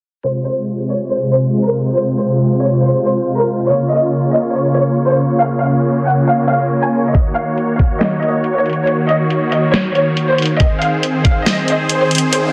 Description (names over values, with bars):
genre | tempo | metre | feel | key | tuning
heavy wobble dubstep | 139 BPM | 4/4 | swing 54% on 16ths, half-time | F phrygian | A4 = 441 Hz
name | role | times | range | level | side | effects
dark symphonic violin section | melody | 0.2-12.4 s | Bb4 to Ab5 | -20 LUFS | equal | delay
supersaw chords | sustained chords | 0.2-12.5 s | C3 to Db5 | -18 LUFS | equal | sidechain pumping, low-pass filter
dubstep drum kit | drums | 7.1-12.4 s | hi-hat, snare drum | -20 LUFS | equal | studio ambience
electronic kick drum | drums | 7.1-7.9, 10.6-11.3 s | none | -15 LUFS | equal | studio ambience
noise sweep | sound effects | 12.4-12.5 s | none | -27 LUFS | equal | none
room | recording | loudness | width
moderate digital room reverb, RT60 1.2 s, digital ambience | dense, heavily limited modern master, low-pass filter | -15 LUFS | mono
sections
0.2-12.5 A section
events
filter sweep on supersaw synth 0.2-12.5; filter sweep 0.2-12.5; noise sweep 12.4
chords
0.2 Fm; 3.7 Bbm; 7.1 Ebm7; 10.6 Ab